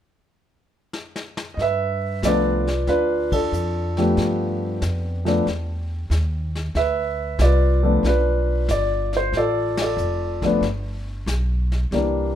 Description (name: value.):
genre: jazz piano trio.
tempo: 93 BPM.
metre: 4/4.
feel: swing 69% on 8ths.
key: G mixolydian.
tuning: A4 = 440 Hz.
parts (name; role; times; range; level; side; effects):
vintage brush drum kit; drums; 0.9-12.4 s; brushed snare drum, hi-hat, kick drum, ride cymbal, snare drum; -32 LUFS; left 2 dB; none.
warm concert grand piano; melody; 1.5-12.4 s; E3 to E5; -21 LUFS; equal; none.
upright bass; bass; 1.6-12.3 s; F1 to G2; -23 LUFS; equal; none.
room: light reverb.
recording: minimal, uncompressed stereo recording.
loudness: -19 LUFS.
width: side -10 dB against mid.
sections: 0.0-1.6 A section; 1.6-12.4 B section.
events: drum fill 0.9-1.6; band accent 3.2-3.5, 9.7-10.0.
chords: 0.0 N.C.; 1.6 G7; 9.3 Dm; 10.6 G.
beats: 0.30 0.94 | 1.59 2.23 2.88 3.52 | 4.17 4.82 5.46 6.11 | 6.75 7.40 8.04 8.69 | 9.34 9.98 10.63 11.28 | 11.92.